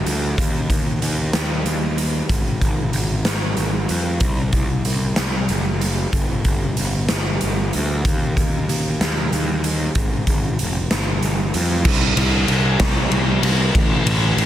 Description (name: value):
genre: quiet-loud alternative rock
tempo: 63 BPM (dotted quarters)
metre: 6/8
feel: straight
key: unclear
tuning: A4 = 437 Hz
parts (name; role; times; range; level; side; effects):
- fuzz picked electric bass; bass; 0.0-14.5 s; F1 to F2; -21 LUFS; equal; overdrive
- raw garage drum kit; drums; 0.1-14.5 s; crash cymbal, hi-hat, kick drum, ride cymbal, snare drum; -19 LUFS; equal; soft clipping on snare
room: little or no reverb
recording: dense, heavily limited modern master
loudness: -17 LUFS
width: side -12 dB against mid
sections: 0.0-11.9 A section; 11.9-14.5 B section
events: none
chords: none